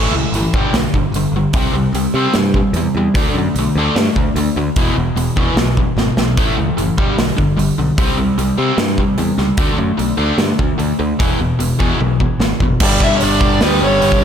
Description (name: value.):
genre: hard rock.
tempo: 149 BPM.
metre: 4/4.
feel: straight.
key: unclear.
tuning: A4 = 441 Hz.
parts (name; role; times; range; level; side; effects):
overdriven electric guitar; riff; 0.0-14.2 s; E2 to D4; -16 LUFS; left 1 dB; spring reverb.
modern bright picked electric bass; bass; 0.0-14.2 s; E1 to C3; -20 LUFS; equal; none.
big rock drum kit; drums; 0.3-14.2 s; crash cymbal, hi-hat, kick drum, snare drum, toms; -18 LUFS; equal; none.
dark smooth lead guitar; melody; 12.8-14.2 s; B4 to E5; -17 LUFS; equal; overdrive.
octave-fuzz lead guitar; second line; 12.8-14.2 s; B3 to E4; -21 LUFS; right 6 dB; distortion.
room: small room reverb.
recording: none.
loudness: -13 LUFS.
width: side -8 dB against mid.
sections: 0.0-12.8 A section; 12.8-14.2 B section.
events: drum fill 6.0-6.4, 12.0-12.8.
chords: 0.0 A; 0.5 G; 1.5 C; 3.2 D5; 4.8 E5; 6.4 A; 7.0 G; 8.0 C5; 9.6 D5; 11.2 E5; 12.8 G5.